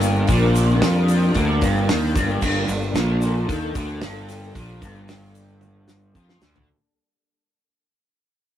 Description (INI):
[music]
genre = psychedelic rock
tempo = 113 BPM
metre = 4/4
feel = straight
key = G minor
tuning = A4 = 443 Hz
[part]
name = soft string machine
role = sustained chords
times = 0.0-6.6 s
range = G3 to Bb4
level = -26 LUFS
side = left 1 dB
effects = ensemble chorus
[part]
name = biting overdriven guitar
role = riff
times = 0.0-6.7 s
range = G2 to F3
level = -24 LUFS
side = equal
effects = rotary speaker
[part]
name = fuzz fingered electric bass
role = bass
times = 0.0-6.7 s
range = G1 to F2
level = -22 LUFS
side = equal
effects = overdrive
[part]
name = damped 70s drum kit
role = drums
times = 0.0-6.7 s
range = crash cymbal, hi-hat, kick drum, snare drum, toms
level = -25 LUFS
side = equal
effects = none
[part]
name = egg shaker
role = percussion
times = 0.0-6.6 s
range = none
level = -39 LUFS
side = left 7 dB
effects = none
[sound]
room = moderate small room reverb, RT60 0.5 s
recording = rough rehearsal-room recording, tube saturation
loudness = -17 LUFS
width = side -11 dB against mid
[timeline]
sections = 0.0-6.7 A section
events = fade-out 0.0-6.7; drum fill 5.6-6.7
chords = 0.0 Gm